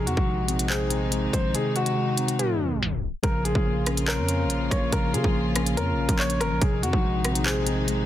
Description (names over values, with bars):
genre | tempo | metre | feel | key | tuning
hip hop, drill | 142 BPM | 4/4 | half-time | Bb minor | A4 = 440 Hz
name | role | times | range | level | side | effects
warm grand piano | melody | 0.0-8.1 s | Gb4 to Db5 | -29 LUFS | left 1 dB | digital delay
mellow tine electric piano | accompaniment | 0.0-8.1 s | C3 to Db5 | -28 LUFS | left 2 dB | medium stereo tremolo
dark symphonic string section | sustained chords | 0.0-8.1 s | C3 to F4 | -32 LUFS | equal | none
growling 808-style bass | bass | 0.0-8.1 s | Ab1 to Db3 | -27 LUFS | right 1 dB | none
drill drum kit | drums | 0.1-8.0 s | handclaps, hi-hat, kick drum, rim click | -27 LUFS | equal | none
room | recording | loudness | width
light reverb | dense, heavily limited modern master, tape stop | -22 LUFS | side -12 dB against mid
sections
0.0-3.2 A section; 3.2-8.1 B section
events
kick muted 1.5-3.2; tape stop 2.4-3.2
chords
0.0 Ab/Bb; 3.2 Bbm; 6.6 Ab/Bb